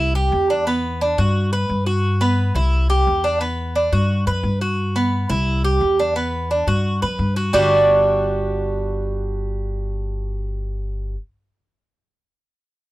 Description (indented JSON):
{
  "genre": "latin, Cuban son and guajira",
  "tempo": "175 BPM",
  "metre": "4/4",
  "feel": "straight",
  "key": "G major",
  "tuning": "A4 = 440 Hz",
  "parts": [
    { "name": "Cuban tres", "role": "arpeggios", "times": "0.0-11.2 s", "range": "G3 to B4", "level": "-20 LUFS", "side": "right 1 dB", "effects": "none" },
    { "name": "upright bass", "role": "bass", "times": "0.0-11.1 s", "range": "G1 to G2", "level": "-21 LUFS", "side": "left 1 dB", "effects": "none" }
  ],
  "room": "little or no reverb",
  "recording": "dry, close 1970s-style studio recording",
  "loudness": "-17 LUFS",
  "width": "side -17 dB against mid",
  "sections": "0.0-7.5 A section; 7.5-10.3 B section",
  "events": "none",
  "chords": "0.0 C; 0.7 Em7; 1.4 Gmaj7; 2.7 C; 3.4 Em7; 4.1 Gmaj7; 5.5 C; 6.2 Em7; 6.8 Gmaj7; 7.5 G5",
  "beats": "0.32 | 0.67 1.01 1.35 1.70 | 2.04 2.38 2.73 3.07 | 3.41 3.76 4.10 4.45 | 4.79 5.13 5.47 5.82 | 6.16 6.50 6.85 7.19 | 7.53 7.88 8.22 8.56 | 8.90 9.25 9.59 9.93"
}